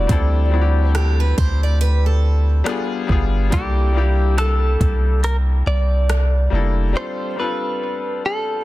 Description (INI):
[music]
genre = contemporary R&B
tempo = 70 BPM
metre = 4/4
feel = swing 58% on 16ths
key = unclear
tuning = A4 = 437 Hz
[part]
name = direct-recorded clean electric guitar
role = melody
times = 0.0-8.6 s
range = G4 to D5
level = -24 LUFS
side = equal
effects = ping-pong delay
[part]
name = bright baby grand piano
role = accompaniment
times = 0.0-8.6 s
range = G3 to A4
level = -25 LUFS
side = left 6 dB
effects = none
[part]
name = long sustained 808-style bass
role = bass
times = 0.0-7.0 s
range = F1 to D2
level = -16 LUFS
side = equal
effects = none
[part]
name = smooth R&B drum kit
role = drums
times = 0.1-6.3 s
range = hi-hat, kick drum, rim click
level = -23 LUFS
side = equal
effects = none
[part]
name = picked steel-string acoustic guitar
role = arpeggios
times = 1.0-2.6 s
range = G4 to D5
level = -28 LUFS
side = right 8 dB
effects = ping-pong delay
[sound]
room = digital ambience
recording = dense, heavily limited modern master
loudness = -16 LUFS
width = side -17 dB against mid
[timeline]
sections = 0.0-8.6 A section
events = break 7.0-8.6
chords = 0.1 D7sus4; 2.7 G7b9; 3.5 C13; 7.0 F69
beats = | 0.09 0.95 1.81 2.67 | 3.52 4.38 5.24 6.09 | 6.95 7.81